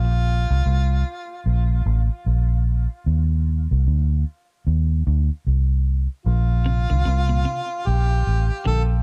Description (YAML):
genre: reggae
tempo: 75 BPM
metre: 4/4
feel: swing 61% on 16ths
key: Bb major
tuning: A4 = 443 Hz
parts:
  - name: mellow harmonica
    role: melody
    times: 0.0-1.4, 6.3-8.8 s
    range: F4 to A4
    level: -32 LUFS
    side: equal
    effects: dub echo
  - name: vintage muted fingered electric bass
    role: bass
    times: 0.0-9.0 s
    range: A1 to Eb2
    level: -20 LUFS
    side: equal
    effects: none
  - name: clean electric guitar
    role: arpeggios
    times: 6.7-8.8 s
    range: Bb2 to D3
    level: -33 LUFS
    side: equal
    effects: dub echo
room: small room reverb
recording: dark, warm production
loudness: -21 LUFS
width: mono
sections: 0.0-9.0 A section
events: break 0.0-6.3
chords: 0.0 Bb5; 3.0 Cmadd9; 6.3 Bb5